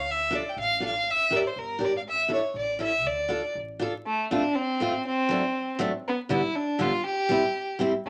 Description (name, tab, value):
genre	alpine folk, alpine dance band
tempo	120 BPM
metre	2/4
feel	straight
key	D minor, F major from 4.1 s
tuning	A4 = 439 Hz
part	rich fiddle	melody	0.0-8.1 s	A3 to G5	-28 LUFS	equal	none
part	upright bass	bass	0.0-3.9, 8.1 s	G1 to D2	-46 LUFS	equal	none
part	picked steel-string acoustic guitar	accompaniment	0.3-7.9 s	D3 to Bb4	-30 LUFS	equal	none
room	wet small room ambience, RT60 0.5 s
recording	vinyl crackle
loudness	-27 LUFS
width	mono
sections	0.0-4.1 A section; 4.1-8.1 B section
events	none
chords	0.1 Dm; 1.1 Gm; 2.0 Asus4; 2.5 A; 3.0 Dm; 4.1 F; 5.1 D7; 6.0 G/D; 7.0 C